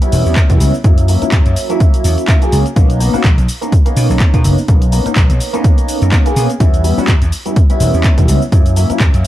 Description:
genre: filtered disco house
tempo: 125 BPM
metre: 4/4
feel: swing 56% on 16ths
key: B major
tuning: A4 = 435 Hz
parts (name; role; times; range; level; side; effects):
- dark baby grand piano; accompaniment; 0.0-9.3 s; F#3 to G#4; -17 LUFS; equal; phaser, vintage 12-bit sampler grit, sidechain pumping
- punchy analog drum machine; drums; 0.0-9.3 s; cabasa, handclaps, hi-hat; -22 LUFS; equal; sidechain pumping on hats, sidechain pumping on perc
- vintage slap bass; bass; 0.1-9.2 s; E1 to B2; -14 LUFS; equal; sidechain pumping
- electronic kick drum; drums; 0.4-9.1 s; none; -11 LUFS; equal; none
room: little or no reverb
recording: dark, warm production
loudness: -9 LUFS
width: side -14 dB against mid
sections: 0.0-9.3 A section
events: none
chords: 0.0 Em6; 0.8 F#7; 2.8 Bmaj9; 6.6 Em6; 8.5 F#7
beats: 0.36 | 0.84 1.32 1.80 2.28 | 2.76 3.24 3.72 4.20 | 4.68 5.16 5.64 6.12 | 6.60 7.08 7.56 8.04 | 8.52 9.00

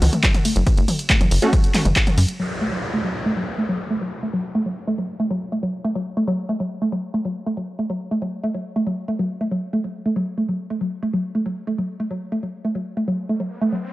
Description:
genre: driving peak-time techno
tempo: 139 BPM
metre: 4/4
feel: straight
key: F# minor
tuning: A4 = 440 Hz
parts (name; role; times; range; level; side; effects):
- tight sequencer bass; bass; 0.0-2.3 s; F#1 to F#2; -17 LUFS; equal; sidechain pumping
- punchy analog drum machine; drums; 0.0-2.4 s; handclaps, hi-hat, ride cymbal, toms; -21 LUFS; equal; overdrive
- woody wave-folded pluck; riff; 0.1-13.8 s; F#3 to A3; -23 LUFS; equal; tube saturation, wide subtle chorus, sidechain pumping, tape echo
- electronic kick drum; drums; 0.2-2.0 s; none; -18 LUFS; equal; none
- rave stab; stabs; 1.4-1.5 s; A3 to F#4; -26 LUFS; right 1 dB; chorus, built-in reverb, cassette tape, sidechain pumping, tape echo
- downlifter and riser; sound effects; 2.4-5.8, 13.2-13.9 s; none; -31 LUFS; equal; none
room: light reverb, digital ambience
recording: dry, gritty hardware recording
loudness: -20 LUFS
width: side -17 dB against mid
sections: 0.0-2.4 A section; 2.4-13.9 B section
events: drop 0.0-2.4; riser 13.2-13.9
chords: 0.0 F#m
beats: 0.23 | 0.67 1.10 1.53 1.96 | 2.39 2.82 3.25 3.69 | 4.12 4.55 4.98 5.41 | 5.84 6.28 6.71 7.14 | 7.57 8.00 8.44 8.87 | 9.30 9.73 10.16 10.59 | 11.03 11.46 11.89 12.32 | 12.75 13.18 13.62

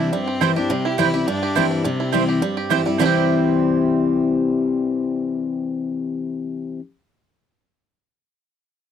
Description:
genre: bluegrass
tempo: 209 BPM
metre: 4/4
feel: straight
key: C major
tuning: A4 = 440 Hz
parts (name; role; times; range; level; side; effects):
- bluegrass banjo; melody; 0.0-6.8 s; G3 to G4; -26 LUFS; right 7 dB; slapback echo
- clear fiddle; melody; 0.0-2.7 s; C4 to G4; -27 LUFS; left 3 dB; none
- picked steel-string acoustic guitar; accompaniment; 0.0-6.8 s; G2 to E4; -20 LUFS; left 4 dB; none
- mandolin; stabs; 0.4-6.8 s; C4 to G5; -23 LUFS; right 14 dB; none
room: light reverb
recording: dry, close 1970s-style studio recording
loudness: -18 LUFS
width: side -8 dB against mid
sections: 0.0-3.0 A section; 3.0-5.3 B section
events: none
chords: 0.0 C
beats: 0.13 0.41 | 0.70 0.99 1.27 1.56 | 1.85 2.13 2.42 2.71 | 3.00 3.28 3.57 3.85 | 4.14 4.43 4.71 5.00

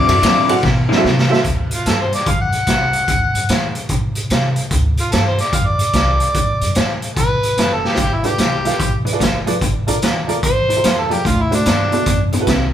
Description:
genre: electric blues shuffle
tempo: 147 BPM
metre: 4/4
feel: swing 64% on 8ths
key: D mixolydian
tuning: A4 = 440 Hz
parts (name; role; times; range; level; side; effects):
- overdriven harmonica; melody; 0.0-12.3 s; D4 to F#5; -18 LUFS; left 1 dB; none
- electric guitar through a small old amp; riff; 0.0-1.1, 8.0-12.7 s; G2 to E4; -22 LUFS; left 2 dB; none
- warm upright piano; accompaniment; 0.1-1.4, 8.2-12.5 s; E4 to F#5; -22 LUFS; right 3 dB; none
- upright bass; bass; 0.1-12.7 s; F1 to C3; -22 LUFS; equal; none
- raw garage drum kit; drums; 0.1-12.6 s; hi-hat, kick drum, ride cymbal, snare drum; -17 LUFS; equal; none
room: light reverb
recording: band playing live in one room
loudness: -14 LUFS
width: side -10 dB against mid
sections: 0.0-1.4 A section; 1.4-12.7 B section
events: harmonica solo 0.0-1.4; drum fill 0.6-1.4, 7.8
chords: 0.0 D9; 1.4 D7; 8.0 G9; 9.6 Gm7; 11.3 D9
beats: 0.23 0.63 1.04 | 1.45 1.86 2.27 2.67 | 3.08 3.49 3.90 4.31 | 4.71 5.12 5.53 5.94 | 6.35 6.76 7.17 7.58 | 7.98 8.39 8.80 9.21 | 9.62 10.03 10.43 10.84 | 11.25 11.66 12.07 12.47

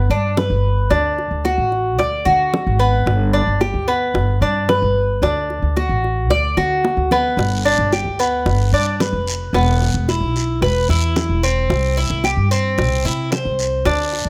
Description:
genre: latin, Cuban son and guajira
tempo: 111 BPM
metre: 4/4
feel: straight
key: G major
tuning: A4 = 440 Hz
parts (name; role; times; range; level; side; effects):
- Cuban tres; arpeggios; 0.0-14.3 s; B3 to D5; -21 LUFS; equal; none
- upright bass; bass; 0.0-14.3 s; E1 to D3; -21 LUFS; equal; none
- bongos; percussion; 0.4-14.3 s; none; -26 LUFS; equal; none
- guiro; percussion; 7.4-14.3 s; none; -31 LUFS; equal; none
room: little or no reverb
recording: close, detailed microphones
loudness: -18 LUFS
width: mono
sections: 0.0-14.3 A section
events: drum fill 6.6-7.4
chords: 0.0 G; 0.9 D; 3.1 G; 5.2 D; 7.4 G; 9.5 E5; 11.7 C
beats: 0.37 | 0.91 1.45 1.99 2.53 | 3.07 3.61 4.15 4.69 | 5.23 5.77 6.31 6.85 | 7.39 7.93 8.47 9.01 | 9.54 10.08 10.62 11.16 | 11.70 12.24 12.78 13.32 | 13.86

